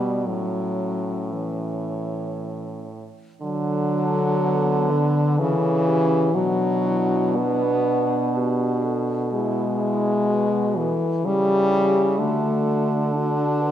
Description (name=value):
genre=classical, lyrical piece for horn quartet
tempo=56-66 BPM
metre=3/4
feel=rubato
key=D major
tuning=A4 = 441 Hz
part: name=dark French horn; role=melody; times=0.0-13.7 s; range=B3 to B4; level=-30 LUFS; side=left 7 dB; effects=none
part: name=warm French horn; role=second line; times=0.0-13.7 s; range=B3 to D5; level=-30 LUFS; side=right 6 dB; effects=none
part: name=mellow French horn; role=accompaniment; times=0.0-13.7 s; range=D3 to D4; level=-22 LUFS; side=left 1 dB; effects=none
part: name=clear French horn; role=bass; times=0.0-13.7 s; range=A2 to D3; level=-25 LUFS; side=right 2 dB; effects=none
room=wet concert hall reverb, RT60 1.9 s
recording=none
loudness=-20 LUFS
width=side -10 dB against mid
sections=0.0-3.4 A section; 3.4-13.7 B section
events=none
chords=0.3 A; 3.4 D; 5.4 A/C#; 6.3 Bm; 9.3 E/B; 11.3 C#dim; 12.2 D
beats=| 0.26 1.33 2.39 | 3.42 4.42 5.39 | 6.34 7.37 8.36 | 9.32 10.28 11.25 | 12.19 13.15